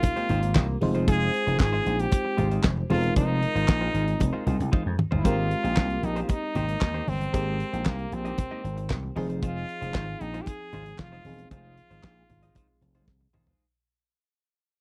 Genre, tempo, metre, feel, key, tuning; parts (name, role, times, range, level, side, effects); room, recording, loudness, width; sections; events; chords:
early-eighties boogie funk; 115 BPM; 4/4; straight; F minor; A4 = 440 Hz
stopped French horn; melody; 0.0-13.0 s; Bb3 to Ab4; -33 LUFS; equal
FM electric piano; accompaniment; 0.0-13.3 s; F3 to C5; -36 LUFS; equal; chorus
clean electric guitar; riff; 0.0-13.6 s; Ab3 to Eb5; -38 LUFS; equal; subtle chorus
damped 70s drum kit; drums; 0.0-13.6 s; handclaps, hi-hat, kick drum, snare drum, toms; -27 LUFS; equal
congas; percussion; 0.0-13.5 s; -36 LUFS; equal
vintage slap bass; bass; 0.3-13.5 s; E1 to F2; -30 LUFS; equal
little or no reverb; dry, close 1970s-style studio recording; -26 LUFS; mono
0.0-5.3 A section; 5.3-13.6 B section
drum fill 4.7-5.3, 13.1-13.6; fade-out 5.3-13.6
0.0 Abmaj9; 0.8 Fm7; 5.3 Abmaj9; 9.2 Fm7